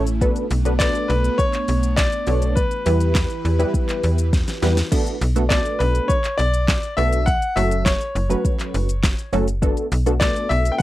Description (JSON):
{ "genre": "dance-pop", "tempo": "102 BPM", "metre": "4/4", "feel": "straight", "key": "B minor", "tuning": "A4 = 439 Hz", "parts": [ { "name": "funky polysynth comp", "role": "accompaniment", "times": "0.0-10.8 s", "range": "F#3 to C#5", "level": "-24 LUFS", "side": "right 1 dB", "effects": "chorus, sidechain pumping" }, { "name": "airy breathy pad", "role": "sustained chords", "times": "0.0-4.9 s", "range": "E3 to B4", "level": "-28 LUFS", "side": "right 1 dB", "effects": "chorus, sidechain pumping" }, { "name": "slap-like FM bass", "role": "bass", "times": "0.0-10.7 s", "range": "F#1 to E2", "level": "-20 LUFS", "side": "equal", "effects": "sidechain pumping" }, { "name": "deep house drum kit", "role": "drums", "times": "0.1-10.8 s", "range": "crash cymbal, handclaps, hi-hat, kick drum, shaker, snare drum", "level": "-21 LUFS", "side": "equal", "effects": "none" }, { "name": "clear concert grand piano", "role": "melody", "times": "0.8-10.8 s", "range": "B4 to G5", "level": "-23 LUFS", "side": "left 2 dB", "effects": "slapback echo" } ], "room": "little or no reverb", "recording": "dry, close 1970s-style studio recording", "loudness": "-17 LUFS", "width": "side -15 dB against mid", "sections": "0.0-4.9 A section; 4.9-10.8 A section", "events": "drum fill 4.3-4.9", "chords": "0.2 Bm7; 2.6 Em; 4.9 Bm7; 7.3 F#m; 9.6 Bm7", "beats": "| 0.21 0.80 1.39 1.98 | 2.57 3.15 3.74 4.33 | 4.92 5.51 6.10 6.68 | 7.27 7.86 8.45 9.04 | 9.62 10.21 10.80" }